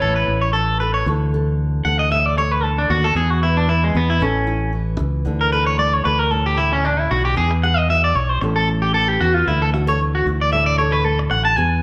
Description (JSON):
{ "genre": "highlife", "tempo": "114 BPM", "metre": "4/4", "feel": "swing 54% on 16ths", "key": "D major", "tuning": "A4 = 440 Hz", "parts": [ { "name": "electric guitar at the edge of break-up", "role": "melody", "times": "0.0-0.5 s", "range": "E4 to C#5", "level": "-24 LUFS", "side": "equal", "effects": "none" }, { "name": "nylon-string guitar", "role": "accompaniment", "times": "0.0-11.8 s", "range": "A2 to A4", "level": "-29 LUFS", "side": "equal", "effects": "none" }, { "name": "electric guitar at the edge of break-up", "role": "arpeggios", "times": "0.0-11.8 s", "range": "G#3 to A5", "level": "-21 LUFS", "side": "equal", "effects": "spring reverb" }, { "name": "fingered electric bass", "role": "bass", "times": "0.0-11.8 s", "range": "A1 to E2", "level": "-22 LUFS", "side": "equal", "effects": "none" } ], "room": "moderate studio reverb, RT60 0.7 s", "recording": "band playing live in one room", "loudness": "-18 LUFS", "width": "mono", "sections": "0.0-1.1 A section; 1.1-11.8 B section", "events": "clean electric guitar solo 1.1-11.8", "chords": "0.0 A; 1.1 Dsus2; 3.2 E; 4.2 A; 5.3 Dsus2; 7.4 E; 8.4 A; 9.5 Dsus2" }